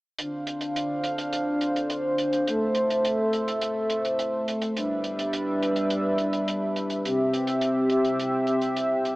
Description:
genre	synthwave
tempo	105 BPM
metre	4/4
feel	straight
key	D dorian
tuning	A4 = 440 Hz
part	chorused pulse-width pad	sustained chords	0.2-9.2 s	C3 to F5	-24 LUFS	equal	none
part	hi-hat	drums	0.2-9.2 s	none	-34 LUFS	right 1 dB	none
room	wet lush hall reverb, RT60 2.5 s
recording	AM radio sound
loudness	-23 LUFS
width	side -20 dB against mid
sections	0.2-9.2 A section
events	none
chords	0.2 Dm7; 2.5 Am; 4.8 G6; 7.0 C

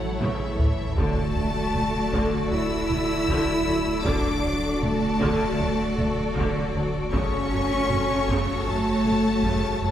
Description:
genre	cinematic, hybrid orchestral and electronic film score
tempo	78 BPM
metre	4/4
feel	straight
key	unclear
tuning	A4 = 440 Hz
part	warm symphonic violin section	melody	0.0-9.9 s	E5 to E6	-31 LUFS	left 3 dB	none
part	warm symphonic violin section	second line	0.0-9.9 s	A4 to D5	-33 LUFS	left 2 dB	none
part	warm symphonic viola section	accompaniment	0.0-9.9 s	C#3 to F#4	-30 LUFS	equal	none
part	glassy FM pad	sustained chords	0.0-9.9 s	E3 to D5	-35 LUFS	equal	ensemble chorus, built-in reverb
part	mellow French horn section	sustained chords	0.0-9.9 s	E3 to E4	-30 LUFS	left 1 dB	none
part	dark symphonic cello section	bass	0.0-9.9 s	E3 to E4	-28 LUFS	right 1 dB	none
part	punchy sub bass	bass	0.0-9.9 s	D1 to A1	-35 LUFS	equal	none
part	rich symphonic double bass section	bass	0.2-9.9 s	A1 to F#2	-30 LUFS	right 1 dB	none
part	taiko ensemble	drums	0.2-9.9 s	none	-31 LUFS	equal	none
room	wet concert hall reverb, RT60 2.3 s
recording	heard from further back in the room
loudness	-21 LUFS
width	side -10 dB against mid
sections	0.0-9.9 A section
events	drum fill 0.0-1.0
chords	0.0 A; 1.0 D; 7.1 F#m

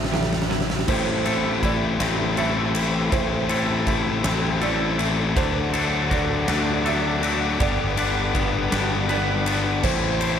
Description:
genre	post-rock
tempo	54 BPM (dotted quarters)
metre	6/8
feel	straight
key	A dorian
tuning	A4 = 442 Hz
part	dark studio string section	sustained chords	0.0-10.4 s	A3 to D6	-34 LUFS	right 2 dB	none
part	twangy electric guitar	arpeggios	0.0-10.4 s	A2 to C5	-30 LUFS	right 2 dB	analog delay
part	overdriven electric guitar	riff	0.0-0.8 s	C3 to E3	-34 LUFS	right 10 dB	none
part	overdriven semi-hollow guitar	riff	0.0-10.4 s	G2 to E4	-24 LUFS	left 6 dB	slapback echo
part	fuzz fingered electric bass	bass	0.0-10.4 s	G1 to D2	-26 LUFS	right 1 dB	overdrive
part	huge arena drum kit	drums	0.0-10.4 s	crash cymbal, kick drum, ride cymbal, snare drum	-26 LUFS	right 1 dB	none
part	felt-muted upright piano	arpeggios	0.1-10.4 s	A4 to E5	-31 LUFS	right 9 dB	analog delay, slapback echo
room	moderate lush hall reverb, RT60 2.5 s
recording	big arena sound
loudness	-20 LUFS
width	side -8 dB against mid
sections	0.9-10.4 A section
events	drum fill 0.0-0.9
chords	0.0 Cmaj7/A; 0.9 Am; 5.4 D; 7.6 G; 9.8 Am

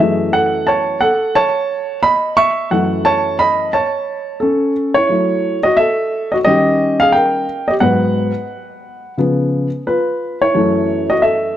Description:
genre	hip hop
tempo	88 BPM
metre	4/4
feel	swing 62% on 16ths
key	F# dorian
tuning	A4 = 440 Hz
part	dark baby grand piano	solo	0.0-11.6 s	F#2 to C#6	-13 LUFS	equal	slapback echo
room	moderate plate reverb, RT60 3.0 s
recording	none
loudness	-13 LUFS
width	side -11 dB against mid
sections	0.0-5.1 A section; 5.1-11.6 B section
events	grand piano solo 0.0-5.1, 5.1-11.6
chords	0.0 F#m7; 6.5 D#7; 7.8 G#m7; 9.2 C#7; 10.5 F#m7

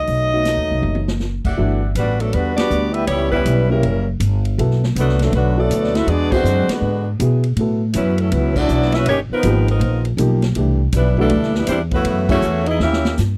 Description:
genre	jazz, big band swing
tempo	160 BPM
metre	4/4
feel	swing 65% on 8ths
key	E minor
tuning	A4 = 441 Hz
part	bright saxophone section	melody	0.0-13.2 s	F3 to E5	-23 LUFS	equal	none
part	warm trombone section	second line	0.0-13.1 s	B2 to A#4	-26 LUFS	equal	none
part	upright bass	bass	0.0-13.4 s	F#1 to B2	-20 LUFS	equal	none
part	swinging big-band drum kit	drums	0.1-13.3 s	crash cymbal, hi-hat, kick drum, ride cymbal, snare drum, toms	-27 LUFS	equal	none
part	warm upright piano	accompaniment	0.3-12.4 s	E3 to A4	-24 LUFS	equal	none
part	warm trumpet section	stabs	1.4-1.9 s	G4 to F#5	-31 LUFS	equal	none
room	little or no reverb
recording	dry, close 1970s-style studio recording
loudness	-18 LUFS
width	mono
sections	0.0-1.6 A section; 1.6-13.4 B section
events	drum fill 0.8-1.2, 12.8-13.2; band accent 2.5, 6.3, 8.5, 12.2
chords	0.1 B7; 1.6 Em9; 3.1 C#m7b5; 3.8 F#7b9; 4.6 Bm7; 6.1 E9; 7.6 A69; 9.1 G7alt; 10.6 Cmaj9; 12.1 F#m7; 12.8 D#7b9

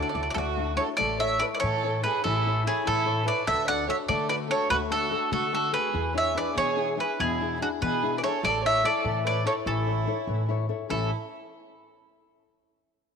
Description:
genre	italian folk, Italian serenade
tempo	97 BPM (dotted quarters)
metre	6/8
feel	rubato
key	A major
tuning	A4 = 440 Hz
part	bowl-back mandolin	melody	0.0-11.1 s	F#4 to F#5	-27 LUFS	equal	none
part	dark violin	second line	0.0-11.1 s	D4 to D5	-31 LUFS	right 10 dB	none
part	flamenco guitar	accompaniment	0.0-11.1 s	A2 to E5	-31 LUFS	left 13 dB	none
part	upright bass	bass	0.1-11.1 s	A1 to E3	-32 LUFS	equal	none
room	moderate plate reverb, RT60 2.5 s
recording	1960s-style stereo with parts hard left and right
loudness	-24 LUFS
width	side -6 dB against mid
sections	1.0-10.9 A section; 10.9-12.1 B section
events	none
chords	0.0 Dadd9; 1.0 A; 3.5 D; 5.9 E7; 8.4 A

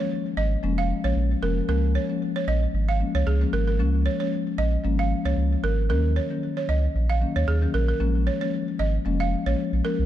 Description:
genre	afrobeats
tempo	114 BPM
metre	4/4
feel	swing 55% on 16ths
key	Db major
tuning	A4 = 440 Hz
part	marimba with soft mallets	accompaniment	0.0-10.0 s	Eb3 to Db4	-27 LUFS	left 6 dB	none
part	balafon	riff	0.0-9.9 s	Ab4 to F5	-29 LUFS	right 6 dB	ping-pong delay
part	warm sub bass	bass	0.4-10.1 s	F1 to Eb2	-23 LUFS	equal	none
room	small room ambience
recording	dark, warm production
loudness	-22 LUFS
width	side -12 dB against mid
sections	0.0-10.1 A section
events	none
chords	0.0 Bbm7; 1.7 Db6; 5.9 Ebm7; 8.0 Bbm7

